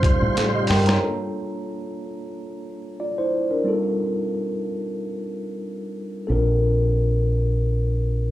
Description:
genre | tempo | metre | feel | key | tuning
R&B, neo-soul | 91 BPM | 4/4 | swing 55% on 16ths | G minor | A4 = 440 Hz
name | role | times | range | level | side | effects
mellow tine electric piano | accompaniment | 0.0-8.3 s | G3 to Bb5 | -24 LUFS | equal | medium stereo tremolo, plate reverb, slapback echo
tonewheel organ | sustained chords | 0.0-1.0 s | Db3 to C5 | -26 LUFS | right 1 dB | slow rotary speaker, chorus vibrato, plate reverb
deep dub fingered electric bass | bass | 0.0-1.0, 6.3-8.3 s | Bb1 to A2 | -20 LUFS | equal | none
dusty soul sampler-style drum kit | drums | 0.0-1.0 s | hi-hat, kick drum, snare drum | -21 LUFS | equal | none
room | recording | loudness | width
moderate club reverb, RT60 0.5 s | live gig heard through the venue's PA, club reverb | -20 LUFS | side -14 dB against mid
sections
0.0-1.0 A section; 1.0-8.3 B section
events
drum fill 0.4-1.0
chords
0.0 Eb13; 1.0 Gm9; 3.7 F9; 6.3 Bbmaj9

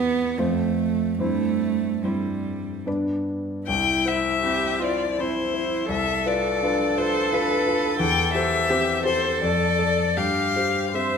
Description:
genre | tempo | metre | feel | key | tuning
classical, slow romantic movement for piano trio | 70-88 BPM | 3/4 | rubato | C major | A4 = 440 Hz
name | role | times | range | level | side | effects
rich violin | melody | 0.0-11.2 s | B4 to G5 | -24 LUFS | left 7 dB | none
warm cello | second line | 0.0-11.2 s | G3 to C5 | -25 LUFS | right 6 dB | none
warm grand piano | accompaniment | 0.0-11.2 s | C2 to D5 | -25 LUFS | left 2 dB | none
room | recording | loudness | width
wet recital hall reverb, RT60 1.4 s | minimal, uncompressed stereo recording | -21 LUFS | side -6 dB against mid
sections
0.0-3.7 A section; 3.7-11.2 B section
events
none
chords
0.4 F; 1.2 C/G; 2.9 G; 3.7 C; 5.9 Bdim/C; 8.0 C/E; 9.4 Dm/F; 10.2 C/G

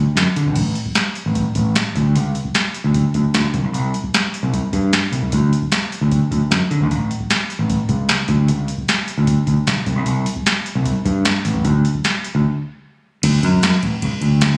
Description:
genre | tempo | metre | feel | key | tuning
indie rock | 152 BPM | 4/4 | straight | unclear | A4 = 436 Hz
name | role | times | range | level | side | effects
growling fingered electric bass | bass | 0.0-14.6 s | A1 to D3 | -19 LUFS | equal | overdrive
soft vintage rhythm box | drums | 0.2-14.5 s | crash cymbal, hi-hat, kick drum, ride cymbal, snare drum | -22 LUFS | equal | none
room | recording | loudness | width
digital ambience | recorded on a phone in the room, studio reverb | -18 LUFS | mono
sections
0.6-13.2 A section; 13.2-14.6 B section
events
break 12.4-13.2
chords
none

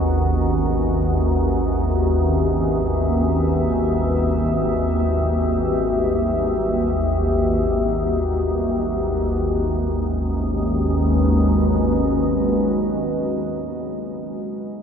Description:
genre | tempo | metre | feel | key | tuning
dark ambient drone | free time | none | none | unclear | A4 = 440 Hz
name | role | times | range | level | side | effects
deep dark ambient pad | sustained chords | 0.0-14.1 s | G#3 to E5 | -22 LUFS | left 1 dB | chorus, built-in reverb
organ-like drone | drone | 0.0-13.3 s | G#1 to D#2 | -20 LUFS | equal | ensemble chorus, built-in reverb
room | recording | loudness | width
wet cathedral reverb, RT60 7.0 s | dark, warm production, lossy compression artefacts | -18 LUFS | side -7 dB against mid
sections
0.0-9.6 A section; 9.6-14.8 B section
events
none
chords
0.0 Emadd9; 9.6 G#m7

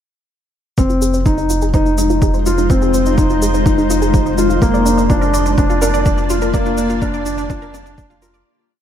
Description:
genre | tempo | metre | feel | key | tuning
piano and strings electronica | 125 BPM | 4/4 | straight | F dorian | A4 = 439 Hz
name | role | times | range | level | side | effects
granular cloud pad | sustained chords | 1.6-8.4 s | Ab3 to D5 | -21 LUFS | left 1 dB | built-in reverb, sidechain pumping
wide unison pluck | arpeggios | 0.8-8.4 s | D4 to D5 | -23 LUFS | right 2 dB | sidechain pumping, ping-pong delay
felt-muted upright piano | riff | 0.8-8.4 s | Bb3 to F4 | -17 LUFS | left 1 dB | ping-pong delay
warm sub bass | bass | 0.8-8.4 s | F1 | -20 LUFS | equal | sidechain pumping
electronic kick drum | drums | 0.8-8.1 s | none | -16 LUFS | equal | none
shaker | drums | 0.8-8.4 s | none | -28 LUFS | left 2 dB | none
room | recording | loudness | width
moderate echo chamber reverb, RT60 1.4 s, digital ambience | dark, warm production | -12 LUFS | side -10 dB against mid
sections
0.8-8.5 build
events
build-up 0.8-8.5; filter sweep on ambient pad 0.8-8.5; filter sweep on synth arpeggio sound 0.8-8.5; fade-out 5.9-8.5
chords
0.8 Fm7; 4.6 Bb/F

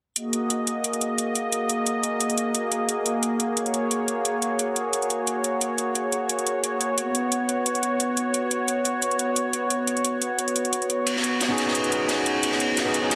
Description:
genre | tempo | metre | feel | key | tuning
liquid drum and bass | 176 BPM | 4/4 | swing 54% on 16ths | F# major | A4 = 440 Hz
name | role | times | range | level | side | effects
warm analog pad | sustained chords | 0.2-13.2 s | A#3 to D#5 | -27 LUFS | equal | chorus
electronic hi-hat | drums | 0.2-13.2 s | none | -28 LUFS | equal | none
crunchy breakbeat drum kit | drums | 11.1-13.2 s | ride cymbal, snare drum | -27 LUFS | equal | high-pass filter on cymbals, high-pass filter on snare, high-pass filter on room
overdriven tine electric piano | accompaniment | 11.5-13.2 s | B3 to G#4 | -27 LUFS | equal | digital delay
room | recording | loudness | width
moderate lush hall reverb, RT60 1.9 s, small room ambience | dense, heavily limited modern master, lossy compression artefacts | -25 LUFS | mono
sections
0.2-13.2 A section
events
none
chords
0.2 F#69; 7.0 C#7sus4

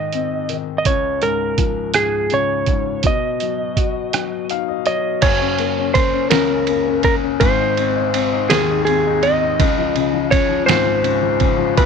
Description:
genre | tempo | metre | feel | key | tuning
six-eight pop ballad | 55 BPM (dotted quarters) | 6/8 | straight | Db major | A4 = 440 Hz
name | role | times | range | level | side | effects
clean lap steel guitar | melody | 0.0-11.9 s | Ab4 to Eb5 | -19 LUFS | right 4 dB | none
warm upright piano | accompaniment | 0.0-11.9 s | Gb1 to F5 | -20 LUFS | left 13 dB | none
lo-fi sampler-style drum kit | drums | 0.1-11.9 s | crash cymbal, hi-hat, kick drum, ride cymbal, rim click, snare drum | -20 LUFS | right 3 dB | none
room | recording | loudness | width
light reverb | 1960s-style stereo | -15 LUFS | side -6 dB against mid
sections
0.0-5.2 A section; 5.2-11.9 B section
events
upright piano fill 4.1-5.2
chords
0.0 Ab; 0.9 Db; 3.0 Cb; 5.2 Gb; 7.4 Ab; 9.6 Db

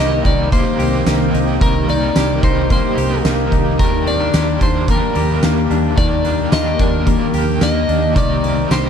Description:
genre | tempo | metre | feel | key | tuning
dream pop | 110 BPM | 4/4 | straight | C minor | A4 = 440 Hz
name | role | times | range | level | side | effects
electric slide guitar | melody | 0.0-8.9 s | Bb4 to Eb5 | -22 LUFS | equal | digital delay
overdriven electric guitar | accompaniment | 0.0-8.9 s | C3 to G4 | -25 LUFS | right 4 dB | tremolo, wide subtle chorus
shimmering ambient pad | sustained chords | 0.0-8.9 s | Eb3 to G4 | -21 LUFS | equal | chorus, built-in reverb
semi-hollow electric guitar | arpeggios | 0.0-8.9 s | Eb3 to G4 | -22 LUFS | left 7 dB | wide subtle chorus, digital delay
vintage muted fingered electric bass | bass | 0.0-8.9 s | C2 to Eb2 | -20 LUFS | equal | none
oversized low-tuned drum kit | drums | 0.2-8.8 s | hi-hat, kick drum, snare drum, tambourine | -18 LUFS | right 1 dB | none
celesta | texture | 4.3-4.9, 8.2-8.7 s | C6 to D6 | -33 LUFS | right 3 dB | none
room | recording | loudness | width
light reverb, small room ambience | dark, warm production | -13 LUFS | side -8 dB against mid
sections
0.0-8.9 A section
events
none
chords
0.0 Cm7; 3.8 Ebmaj7; 8.2 Cm7

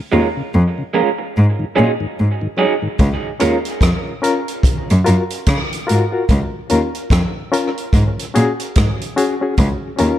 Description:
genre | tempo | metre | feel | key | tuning
dub reggae | 73 BPM | 4/4 | swing 60% on 16ths | Db major | A4 = 440 Hz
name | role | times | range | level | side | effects
electric guitar through a small old amp | accompaniment | 0.1-3.6 s | Gb3 to Bb4 | -20 LUFS | right 5 dB | wide subtle chorus, tape echo
mellow tonewheel organ | accompaniment | 0.1-2.9 s | Ab2 to Db4 | -23 LUFS | left 2 dB | chorus vibrato, slow rotary speaker
rich cello | bass | 0.1-10.1 s | Db2 to Db3 | -15 LUFS | equal | none
vintage drum kit | drums | 3.0-10.2 s | hi-hat, kick drum, rim click | -18 LUFS | equal | none
barky reed electric piano | stabs | 3.4-10.2 s | Db4 to Bb4 | -20 LUFS | left 3 dB | overdrive, fast tremolo, tape echo
room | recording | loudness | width
light reverb, studio ambience | dark, warm production | -14 LUFS | side -12 dB against mid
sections
0.0-3.0 A section; 3.0-10.2 B section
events
break 0.0-3.0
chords
0.0 Db6; 1.3 Ab7sus4; 3.0 Db6; 4.6 Gbmaj7; 6.3 Db6; 7.9 Ab7sus4; 9.6 Db6

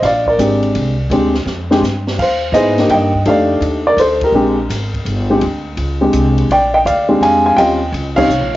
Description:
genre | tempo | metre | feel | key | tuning
jazz piano trio | 167 BPM | 3/4 | swing 66% on 8ths | Bb mixolydian | A4 = 439 Hz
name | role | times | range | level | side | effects
dark baby grand piano | melody | 0.0-8.5 s | G3 to Ab5 | -12 LUFS | equal | cassette tape
upright bass | bass | 0.0-8.6 s | G1 to Ab2 | -19 LUFS | equal | none
open jazz drum kit | drums | 0.0-8.4 s | crash cymbal, hi-hat, kick drum, ride cymbal, snare drum | -26 LUFS | equal | cassette tape
room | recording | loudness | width
moderate spring reverb, RT60 1.5 s, studio reverb | home recording on cassette, nothing above 7.6 kHz | -12 LUFS | side -15 dB against mid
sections
0.0-6.5 A section; 6.5-8.6 A section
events
drum fill 1.5-2.2; band accent 4.2, 8.1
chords
0.0 Bb13; 2.2 Cm7; 3.3 F13; 4.3 Bb13; 7.6 Eb13

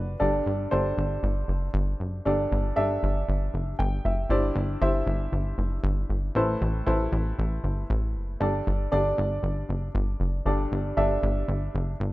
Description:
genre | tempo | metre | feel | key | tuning
piano-driven pop | 117 BPM | 4/4 | straight | G major | A4 = 440 Hz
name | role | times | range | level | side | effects
warm upright piano | accompaniment | 0.0-12.1 s | G2 to G5 | -28 LUFS | equal | none
plucky analog bass | bass | 0.0-12.1 s | F#1 to A1 | -26 LUFS | equal | none
room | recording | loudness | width
small room ambience | rough home demo mix | -24 LUFS | side -18 dB against mid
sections
0.2-12.1 A section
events
upright piano fill 3.5-4.3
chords
0.2 Gsus2; 4.3 Cadd9/G; 6.4 Amadd9; 8.4 Gsus2

